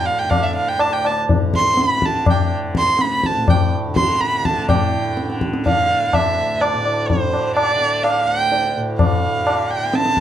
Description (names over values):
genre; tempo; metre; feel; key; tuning
indian classical, Hindustani; 124 BPM; 3/4; straight; D raga bhimpalasi; A4 = 440 Hz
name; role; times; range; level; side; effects
rich violin; melody; 0.0-10.2 s; C5 to C6; -19 LUFS; right 2 dB; none
tanpura; drone; 0.0-10.2 s; D2 to D3; -26 LUFS; right 1 dB; none
tabla; percussion; 0.3-10.2 s; none; -19 LUFS; left 2 dB; none
room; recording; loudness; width
moderate studio reverb, RT60 0.6 s; dark, warm production; -15 LUFS; side -10 dB against mid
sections
0.0-4.7 A section; 4.7-10.2 B section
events
speeding up 0.0-10.2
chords
none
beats
| 0.30 0.79 1.28 | 1.77 2.26 2.75 | 3.24 3.72 4.21 | 4.69 5.17 5.65 | 6.13 6.61 7.09 | 7.57 8.04 8.52 | 8.99 9.47 9.94